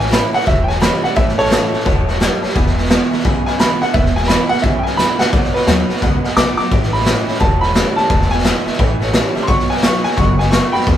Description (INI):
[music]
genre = rockabilly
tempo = 173 BPM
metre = 4/4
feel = swing 63% on 8ths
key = E major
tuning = A4 = 438 Hz
[part]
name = warm upright piano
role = melody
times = 0.0-10.9 s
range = A4 to D6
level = -19 LUFS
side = right 1 dB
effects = none
[part]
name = honky-tonk upright piano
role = accompaniment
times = 0.0-11.0 s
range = G#4 to B5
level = -29 LUFS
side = left 2 dB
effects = none
[part]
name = picked steel-string acoustic guitar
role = accompaniment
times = 0.0-11.0 s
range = E2 to F#4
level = -24 LUFS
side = left 3 dB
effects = none
[part]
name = electric guitar through a small old amp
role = riff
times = 0.0-11.0 s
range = E2 to A3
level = -21 LUFS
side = right 4 dB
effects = none
[part]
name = upright bass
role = bass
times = 0.0-11.0 s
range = E1 to E2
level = -20 LUFS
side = equal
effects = none
[part]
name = raw garage drum kit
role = drums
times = 0.0-11.0 s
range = hi-hat, kick drum, snare drum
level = -16 LUFS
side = equal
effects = none
[sound]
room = light reverb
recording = band playing live in one room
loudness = -12 LUFS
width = side -11 dB against mid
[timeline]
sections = 0.0-10.9 A section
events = upright piano solo 0.0-10.9; drum fill 5.0-5.3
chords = 0.0 A; 2.6 E; 5.3 B; 6.7 A; 8.1 E; 8.8 A; 9.5 B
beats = 0.12 0.47 0.82 | 1.17 1.51 1.86 2.21 | 2.55 2.90 3.25 3.59 | 3.94 4.29 4.63 4.98 | 5.33 5.67 6.02 6.37 | 6.71 7.06 7.41 7.75 | 8.10 8.44 8.79 9.14 | 9.48 9.83 10.17 10.52 | 10.87